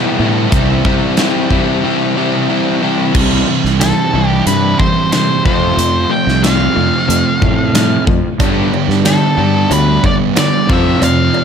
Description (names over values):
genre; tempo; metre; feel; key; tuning
classic rock; 91 BPM; 4/4; straight; unclear; A4 = 439 Hz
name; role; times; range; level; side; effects
overdriven semi-hollow guitar; riff; 0.0-11.4 s; F2 to G4; -17 LUFS; left 12 dB; none
sludgy distorted guitar; riff; 0.0-11.4 s; E2 to G4; -16 LUFS; right 11 dB; overdrive
fuzz fingered electric bass; bass; 0.2-11.3 s; C2 to A2; -16 LUFS; equal; overdrive
big rock drum kit; drums; 0.5-11.2 s; crash cymbal, hi-hat, kick drum, snare drum; -17 LUFS; equal; none
octave-fuzz lead guitar; melody; 3.8-11.4 s; A4 to G5; -17 LUFS; left 2 dB; distortion
cowbell; percussion; 8.4-11.4 s; none; -26 LUFS; right 6 dB; none
room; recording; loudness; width
light reverb; none; -10 LUFS; side -7 dB against mid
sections
0.0-3.1 A section; 3.1-11.4 B section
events
none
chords
0.0 Em; 0.5 C; 5.4 F; 8.4 G; 10.7 F